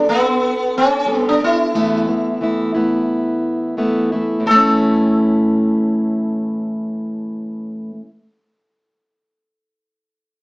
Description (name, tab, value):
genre	pop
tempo	89 BPM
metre	4/4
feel	swing 55% on 16ths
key	A major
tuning	A4 = 439 Hz
part	sitar	melody	0.0-7.8 s	B3 to A4	-17 LUFS	equal	none
part	fingerpicked plugged-in steel-string acoustic guitar	accompaniment	0.0-8.1 s	E2 to A4	-17 LUFS	equal	none
room	wet studio reverb, RT60 0.8 s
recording	heard from further back in the room, small speaker sound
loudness	-15 LUFS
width	side -28 dB against mid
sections	0.0-4.5 A section; 4.5-7.2 B section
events	none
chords	0.0 Gadd9; 1.8 Esus4; 4.5 A